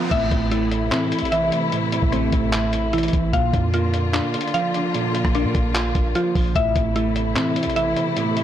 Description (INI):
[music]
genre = hip hop, trap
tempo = 149 BPM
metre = 4/4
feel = half-time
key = A phrygian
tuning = A4 = 440 Hz
[part]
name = semi-hollow electric guitar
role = accompaniment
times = 0.0-8.4 s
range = A2 to F4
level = -24 LUFS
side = right 5 dB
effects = none
[part]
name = warm symphonic string section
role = sustained chords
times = 0.0-8.4 s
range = C3 to F4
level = -26 LUFS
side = left 4 dB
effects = none
[part]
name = mallet-like synth pluck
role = arpeggios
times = 0.0-8.4 s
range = C4 to F5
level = -25 LUFS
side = left 2 dB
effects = chorus, digital delay
[part]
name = clean 808-style bass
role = bass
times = 0.1-7.9 s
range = A1 to E3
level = -25 LUFS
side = equal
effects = none
[part]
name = lo-fi sampler-style drum kit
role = drums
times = 0.1-8.4 s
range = crash cymbal, handclaps, hi-hat, kick drum, rim click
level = -25 LUFS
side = equal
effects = none
[sound]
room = light reverb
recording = blown-out, overdriven recording, overdrive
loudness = -18 LUFS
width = side -10 dB against mid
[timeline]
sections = 0.1-8.4 A section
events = none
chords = 0.1 Am; 3.3 Bb; 6.6 Am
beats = | 0.11 0.52 0.92 1.32 | 1.72 2.12 2.53 2.93 | 3.33 3.74 4.14 4.54 | 4.94 5.35 5.75 6.15 | 6.55 6.96 7.36 7.76 | 8.17